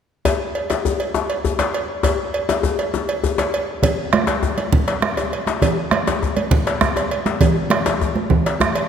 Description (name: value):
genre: west african traditional, West African drum ensemble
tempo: 134 BPM (dotted quarters)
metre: 12/8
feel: straight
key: none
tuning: none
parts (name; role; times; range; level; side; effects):
- cowbell; percussion; 0.3-8.9 s; none; -24 LUFS; right 3 dB; none
- djembe; percussion; 0.3-8.9 s; none; -22 LUFS; left 5 dB; none
- bombo; percussion; 3.8-8.8 s; none; -20 LUFS; right 1 dB; none
- congas; percussion; 3.8-8.7 s; none; -21 LUFS; right 4 dB; none
room: wet concert hall reverb, RT60 2.4 s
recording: none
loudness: -17 LUFS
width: side -8 dB against mid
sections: 0.3-3.8 A section; 3.8-8.9 B section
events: none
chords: none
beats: | 0.25 0.70 1.15 1.60 | 2.04 2.49 2.94 3.39 | 3.84 4.28 4.73 5.18 | 5.63 6.07 6.52 6.97 | 7.42 7.86 8.31 8.76